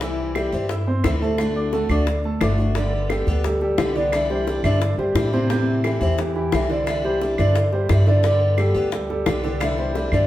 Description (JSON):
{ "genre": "latin, Cuban son and guajira", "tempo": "175 BPM", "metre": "4/4", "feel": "straight", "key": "G major", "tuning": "A4 = 439 Hz", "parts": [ { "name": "picked steel-string acoustic guitar", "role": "accompaniment", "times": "0.0-10.3 s", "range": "C3 to G4", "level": "-27 LUFS", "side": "left 3 dB", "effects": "none" }, { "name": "clear concert grand piano", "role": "arpeggios", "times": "0.0-10.3 s", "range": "C3 to E6", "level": "-23 LUFS", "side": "right 1 dB", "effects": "slapback echo" }, { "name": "upright bass", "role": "bass", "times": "0.0-10.3 s", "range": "G1 to A2", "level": "-22 LUFS", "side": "equal", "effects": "none" }, { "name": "bongos", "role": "percussion", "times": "0.0-10.1 s", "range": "none", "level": "-29 LUFS", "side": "left 4 dB", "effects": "none" }, { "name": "claves", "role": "percussion", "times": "0.4-10.3 s", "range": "none", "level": "-35 LUFS", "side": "equal", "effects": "none" } ], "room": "wet large studio reverb, RT60 1.2 s", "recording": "heard from further back in the room", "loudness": "-18 LUFS", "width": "side -14 dB against mid", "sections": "0.0-2.8 A section; 2.8-10.3 B section", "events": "none", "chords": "0.0 C; 1.4 D; 2.8 Gadd9; 4.1 Cadd9; 8.2 Gadd9; 9.6 Cadd9" }